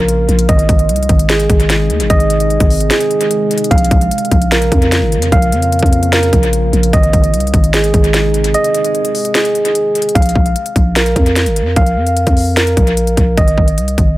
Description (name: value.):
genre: hip hop, trap.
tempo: 149 BPM.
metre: 4/4.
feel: half-time.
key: Bb minor.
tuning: A4 = 439 Hz.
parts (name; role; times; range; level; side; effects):
deep dark ambient pad; sustained chords; 0.0-10.1 s; C3 to F4; -23 LUFS; left 2 dB; chorus, built-in reverb.
mellow tine electric piano; arpeggios; 0.0-14.2 s; Ab4 to F5; -15 LUFS; right 2 dB; low-pass filter, dub echo.
growling 808-style bass; bass; 0.0-14.2 s; Ab1 to F2; -14 LUFS; equal; none.
trap drum kit; drums; 0.1-14.1 s; hi-hat, kick drum, snare drum; -14 LUFS; equal; dub echo.
room: little or no reverb.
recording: echo-heavy mix.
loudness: -10 LUFS.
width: side -17 dB against mid.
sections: 0.0-10.2 A section; 10.2-14.2 B section.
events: kick muted 2.9-3.7; break 8.5-10.2.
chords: 0.5 Ab; 3.7 Bbm; 6.9 Ab; 10.2 Bb5; 13.4 Ab.